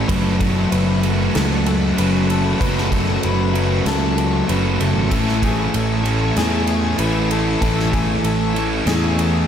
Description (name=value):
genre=rock, shoegaze and dream pop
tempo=96 BPM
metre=4/4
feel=straight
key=A major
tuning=A4 = 440 Hz
part: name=string machine, violins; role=sustained chords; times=0.0-9.5 s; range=A3 to C#6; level=-26 LUFS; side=right 1 dB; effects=ensemble chorus
part: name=direct-recorded clean electric guitar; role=arpeggios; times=0.0-9.5 s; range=G#4 to B4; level=-26 LUFS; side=left 8 dB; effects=lush chorus, tape echo
part: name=raw garage guitar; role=riff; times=0.0-9.5 s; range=A2 to F#4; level=-23 LUFS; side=right 8 dB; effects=overdrive, reverse reverb
part: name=thick fuzz guitar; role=riff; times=0.0-9.5 s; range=F#2 to A3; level=-22 LUFS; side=left 6 dB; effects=distortion, wide subtle chorus
part: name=picked electric bass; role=bass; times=0.0-9.4 s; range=F#1 to E2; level=-21 LUFS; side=right 1 dB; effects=none
part: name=gated 80s drum kit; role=drums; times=0.1-9.3 s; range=kick drum, ride cymbal, snare drum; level=-26 LUFS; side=right 1 dB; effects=none
room=moderate plate reverb, RT60 2.9 s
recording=dreamy mix soaked in reverb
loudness=-16 LUFS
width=side -8 dB against mid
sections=0.0-9.5 A section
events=none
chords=0.1 F#m7; 5.1 Amaj7